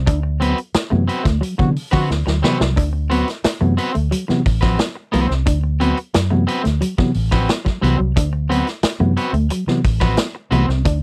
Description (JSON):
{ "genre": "funk", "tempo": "89 BPM", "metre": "4/4", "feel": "straight", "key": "D mixolydian", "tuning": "A4 = 440 Hz", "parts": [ { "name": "vintage muted fingered electric bass", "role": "bass", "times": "0.0-11.0 s", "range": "A1 to D3", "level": "-21 LUFS", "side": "equal", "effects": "none" }, { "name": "electric guitar at the edge of break-up", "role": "riff", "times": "0.1-11.0 s", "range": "F3 to D4", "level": "-26 LUFS", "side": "equal", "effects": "harmonic tremolo" }, { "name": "vintage drum kit", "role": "drums", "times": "0.1-11.0 s", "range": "hi-hat, kick drum, snare drum", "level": "-22 LUFS", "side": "equal", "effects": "none" }, { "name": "electric guitar at the edge of break-up", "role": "accompaniment", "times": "0.4-10.7 s", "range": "C4 to B4", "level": "-24 LUFS", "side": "equal", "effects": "none" }, { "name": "mellow tine electric piano", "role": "stabs", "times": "0.4-10.6 s", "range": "C3 to B3", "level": "-22 LUFS", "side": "equal", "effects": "none" }, { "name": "warm trombone", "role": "second line", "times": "1.6-2.0 s", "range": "F#4", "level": "-26 LUFS", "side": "equal", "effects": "none" } ], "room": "little or no reverb", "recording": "dry, close 1970s-style studio recording", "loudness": "-18 LUFS", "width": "mono", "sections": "0.0-11.0 A section", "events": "band accent 0.1-2.8; drum fill 2.1-2.8", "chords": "0.0 D13" }